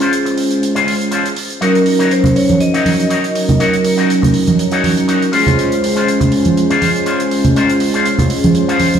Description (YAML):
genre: nu-disco, nu disco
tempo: 121 BPM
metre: 4/4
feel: swing 54% on 16ths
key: unclear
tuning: A4 = 441 Hz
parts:
  - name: mellow synth brass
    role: accompaniment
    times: 0.0-9.0 s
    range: Gb3 to C5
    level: -14 LUFS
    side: equal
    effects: chorus, tape echo
  - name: electric guitar with an envelope filter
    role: riff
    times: 0.0-8.9 s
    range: Db4 to Db5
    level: -18 LUFS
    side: left 4 dB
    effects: lush chorus, low-pass filter, tape echo
  - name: hi-hat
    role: drums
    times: 0.0-9.0 s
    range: none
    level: -25 LUFS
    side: right 3 dB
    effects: studio reverb
  - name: vibraphone with medium hard mallets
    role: melody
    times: 1.6-4.1 s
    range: Bb4 to Eb5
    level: -19 LUFS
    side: equal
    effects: ping-pong delay
  - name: congas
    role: percussion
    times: 2.2-9.0 s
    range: none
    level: -16 LUFS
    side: right 2 dB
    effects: none
room: moderate plate reverb, RT60 2.4 s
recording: played on a big sound system in a bare room, stone room reverb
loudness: -11 LUFS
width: side -8 dB against mid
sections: 0.0-9.0 A section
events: filter sweep on analog polysynth 0.0-9.0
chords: 0.0 Dbmaj7; 1.6 Ebm7; 5.3 Dbmaj7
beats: 0.12 0.62 1.12 | 1.61 2.11 2.60 3.10 | 3.60 4.09 4.59 5.08 | 5.58 6.07 6.57 7.07 | 7.56 8.06 8.55